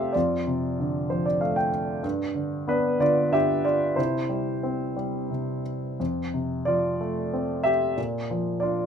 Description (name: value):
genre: classical, lyrical solo piano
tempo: 93 BPM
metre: 3/4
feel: rubato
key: F major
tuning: A4 = 440 Hz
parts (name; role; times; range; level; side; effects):
- clear grand piano; solo; 0.0-8.9 s; F2 to G5; -23 LUFS; equal; none
room: light reverb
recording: minimal, uncompressed stereo recording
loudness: -23 LUFS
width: side -7 dB against mid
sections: 0.0-8.9 A section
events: grand piano fill 0.8-2.0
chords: 0.1 Dm7/F; 2.0 G7; 4.0 C; 6.0 F; 8.0 Bb